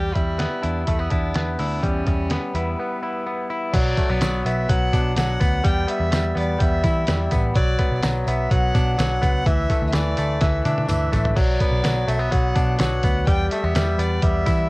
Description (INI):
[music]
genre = jangly indie pop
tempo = 126 BPM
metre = 4/4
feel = straight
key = B minor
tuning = A4 = 439 Hz
[part]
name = warm violin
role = melody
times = 0.0-14.7 s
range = B3 to G5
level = -27 LUFS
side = right 1 dB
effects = none
[part]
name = direct-recorded clean electric guitar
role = arpeggios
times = 0.0-14.7 s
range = E3 to E4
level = -25 LUFS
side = left 2 dB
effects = cassette tape
[part]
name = vintage muted picked electric bass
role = bass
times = 0.0-14.7 s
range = A1 to E3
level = -23 LUFS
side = equal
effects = none
[part]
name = lo-fi sampler-style drum kit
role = drums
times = 0.2-14.6 s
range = crash cymbal, hi-hat, kick drum, snare drum, toms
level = -22 LUFS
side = equal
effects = none
[part]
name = tambourine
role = percussion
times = 3.8-14.6 s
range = none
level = -45 LUFS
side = right 6 dB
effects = none
[sound]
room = little or no reverb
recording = home recording on cassette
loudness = -18 LUFS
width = side -23 dB against mid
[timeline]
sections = 0.0-3.7 A section; 3.7-14.7 B section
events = break 2.8-3.7; drum fill 10.4-11.4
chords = 0.0 Em; 3.7 Bm; 5.6 Em; 7.6 Bm; 9.5 Dsus2; 11.4 Bm; 13.3 Em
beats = 0.39 0.87 1.35 | 1.83 2.31 2.79 3.26 | 3.74 4.22 4.69 5.17 | 5.65 6.12 6.60 7.08 | 7.55 8.03 8.51 8.98 | 9.46 9.94 10.41 10.89 | 11.37 11.85 12.32 12.80 | 13.28 13.75 14.23